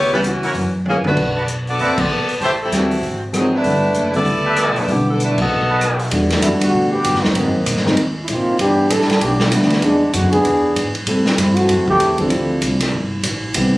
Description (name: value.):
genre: jazz, big band swing.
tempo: 194 BPM.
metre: 4/4.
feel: swing 61% on 8ths.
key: E minor from 6.1 s.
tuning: A4 = 440 Hz.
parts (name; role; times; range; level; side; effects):
warm saxophone section; melody; 0.0-6.0 s; E3 to E5; -18 LUFS; equal; none.
upright bass; bass; 0.0-13.8 s; F#1 to A#2; -22 LUFS; equal; none.
warm concert grand piano; accompaniment; 0.1-13.8 s; D3 to A4; -19 LUFS; equal; none.
swinging big-band drum kit; drums; 0.2-13.6 s; crash cymbal, hi-hat, kick drum, ride cymbal, rim click, snare drum, toms; -22 LUFS; equal; none.
warm trumpet section; stabs; 0.4-6.1 s; E4 to A5; -20 LUFS; right 1 dB; none.
warm trombone section; second line; 6.4-12.8 s; D3 to A4; -16 LUFS; equal; none.
room: moderate club reverb, RT60 0.5 s.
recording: recorded on a phone in the room, club reverb, compression.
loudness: -14 LUFS.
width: side -19 dB against mid.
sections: 0.0-6.1 A section; 6.1-13.8 B section.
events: drum fill 0.9-1.2; band accent 1.9, 5.3; trombone section solo 6.1-13.8.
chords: 0.0 C#m7b5; 0.6 F#7(no3); 2.4 Am7; 3.0 Ab13; 3.6 G69; 5.5 B7; 6.1 Em11; 7.4 G#9; 8.6 G6; 9.8 E7; 11.1 Am7; 12.3 Dm11; 12.9 Gsus2.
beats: 0.24 0.55 0.86 | 1.17 1.48 1.79 2.10 | 2.41 2.72 3.03 3.33 | 3.64 3.95 4.26 4.57 | 4.88 5.19 5.50 5.81 | 6.12 6.43 6.74 7.05 | 7.36 7.67 7.97 8.28 | 8.59 8.90 9.21 9.52 | 9.83 10.14 10.45 10.76 | 11.07 11.38 11.69 12.00 | 12.31 12.62 12.93 13.24 | 13.55.